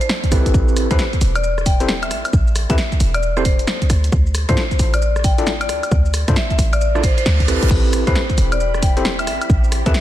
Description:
UK garage, two-step garage; 134 BPM; 4/4; swing 63% on 16ths; A minor; A4 = 440 Hz
marimba with hard mallets; melody; 0.0-10.0 s; C5 to G5; -25 LUFS; left 2 dB; digital delay
short 808-style bass; bass; 0.0-9.9 s; E1 to G2; -18 LUFS; equal; tube saturation
punchy analog drum machine; drums; 0.0-10.0 s; crash cymbal, hi-hat, rim click, shaker, snare drum, woodblock; -23 LUFS; equal
electronic kick drum; drums; 0.2-9.9 s; -18 LUFS; equal
overdriven tine electric piano; stabs; 0.3-9.9 s; C4 to D5; -24 LUFS; moving between left 6 dB and right 4 dB; auto-pan, digital delay
reverse cymbal; sound effects; 7.0-7.7 s; -27 LUFS; right 5 dB
soft string machine; sustained chords; 7.7-10.0 s; C4 to B5; -29 LUFS; equal; phaser, ensemble chorus, sidechain pumping
digital ambience; dense, heavily limited modern master; -14 LUFS; side -13 dB against mid
0.0-10.0 A section
reverse cymbal 7.0-7.7
0.0 D7sus2 (rootless); 0.5 Am9; 3.9 D7sus2; 7.7 Am9

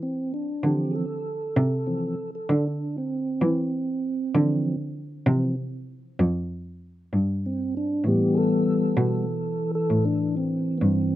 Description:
slow blues; 65 BPM (dotted quarters); 12/8; straight; A4 = 440 Hz
mellow tonewheel organ; sustained chords; 0.0-11.2 s; E3 to A4; -25 LUFS; equal; chorus vibrato, slow rotary speaker
clear cello; bass; 0.0-11.2 s; F2 to E3; -25 LUFS; equal
light reverb; rough home demo mix; -22 LUFS; side -14 dB against mid
0.0-11.2 A section
tonewheel organ solo 0.0-11.2
0.0 Am (rootless); 0.6 Dm7; 8.1 Am7

